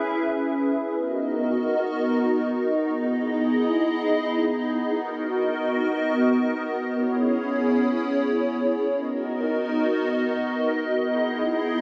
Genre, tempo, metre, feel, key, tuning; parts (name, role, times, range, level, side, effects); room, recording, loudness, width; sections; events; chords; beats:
hip hop; free time; B major; A4 = 442 Hz
hollow soft pad; solo; 0.0-11.8 s; B3 to E5; -24 LUFS; equal; ensemble chorus, digital delay
moderate lush hall reverb, RT60 2.3 s; -24 LUFS; mono
0.0-9.0 A section; 9.0-11.8 B section
0.0 C#m7; 1.0 Bmaj7; 3.0 Emaj7; 5.0 Bmaj7; 7.0 C#m7; 9.0 Bmaj7; 11.0 Emaj7
free time